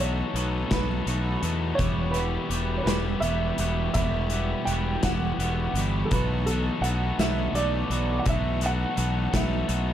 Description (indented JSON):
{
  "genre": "indie rock",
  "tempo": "56 BPM (dotted quarters)",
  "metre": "6/8",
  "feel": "straight",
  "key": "E minor",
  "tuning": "A4 = 439 Hz",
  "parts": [
    { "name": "dark upright piano", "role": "melody", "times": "0.0-9.9 s", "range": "A4 to G5", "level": "-31 LUFS", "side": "right 3 dB", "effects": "plate reverb" },
    { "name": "crunchy overdriven guitar", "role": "riff", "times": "0.0-9.9 s", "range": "F#3 to A4", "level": "-32 LUFS", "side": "left 10 dB", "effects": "none" },
    { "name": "twelve-string electric guitar", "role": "riff", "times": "0.0-9.9 s", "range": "E2 to F#4", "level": "-32 LUFS", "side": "right 6 dB", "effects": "wide subtle chorus" },
    { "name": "fuzz fingered electric bass", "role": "bass", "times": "0.0-9.9 s", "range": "E1 to E2", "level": "-27 LUFS", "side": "equal", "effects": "overdrive" },
    { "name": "loose indie drum kit", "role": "drums", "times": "0.4-9.9 s", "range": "hi-hat, kick drum, snare drum", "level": "-29 LUFS", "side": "equal", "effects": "none" }
  ],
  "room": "light reverb",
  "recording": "dark, warm production",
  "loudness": "-23 LUFS",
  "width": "side -11 dB against mid",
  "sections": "0.0-9.9 A section",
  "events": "none",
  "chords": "0.0 B7sus4; 1.8 Emadd9; 6.1 B7sus4",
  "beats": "0.72 | 1.80 2.88 | 3.96 5.04 | 6.11 7.19 | 8.27 9.34"
}